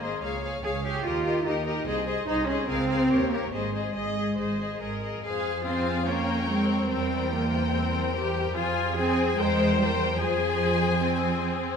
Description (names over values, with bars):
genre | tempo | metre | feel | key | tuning
quick classical-period movement for string orchestra | 145 BPM | 4/4 | straight | Ab major, F minor from 5.2 s | A4 = 439 Hz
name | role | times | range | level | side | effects
rich symphonic violin section | melody | 0.0-11.8 s | Db5 to Ab5 | -34 LUFS | left 5 dB | none
rich chamber violin section | second line | 0.0-11.8 s | Ab4 to Eb5 | -31 LUFS | left 5 dB | none
clear chamber viola section | accompaniment | 0.0-11.8 s | Bb3 to C5 | -30 LUFS | left 1 dB | none
rich chamber double bass section | bass | 0.0-11.8 s | Ab1 to F2 | -32 LUFS | right 3 dB | none
warm symphonic cello section | bass | 0.0-11.6 s | F3 to Ab4 | -28 LUFS | right 2 dB | none
room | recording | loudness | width
wet scoring stage reverb, RT60 1.6 s | minimal, uncompressed stereo recording | -24 LUFS | side -6 dB against mid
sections
0.0-5.2 A section; 5.2-11.8 B section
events
none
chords
0.2 Db; 1.0 Eb; 1.9 Ab/C; 2.7 Bbm7/Db; 3.1 Eb7; 3.5 Ab; 5.2 Fm; 6.1 Gm7b5/F; 6.9 C7/E; 8.5 Fm; 9.4 C7/E; 10.2 Fm